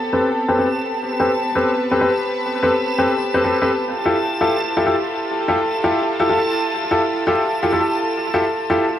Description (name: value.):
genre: drum and bass.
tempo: 168 BPM.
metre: 4/4.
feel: swing 55% on 16ths.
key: unclear.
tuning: A4 = 444 Hz.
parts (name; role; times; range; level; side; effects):
warm studio string section; sustained chords; 0.0-9.0 s; B3 to B4; -23 LUFS; equal; none.
backwards swelling texture; texture; 0.0-9.0 s; A5; -26 LUFS; right 1 dB; built-in reverb.
warm baby grand piano; stabs; 0.1-8.8 s; C4 to B4; -18 LUFS; left 1 dB; low-pass filter, dub echo.
room: moderate plate reverb, RT60 1.2 s.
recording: vinyl crackle.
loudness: -16 LUFS.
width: side -11 dB against mid.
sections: 0.0-9.0 A section.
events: filter sweep on grand piano 0.0-9.0.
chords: 0.0 Am9; 3.9 Fmaj9.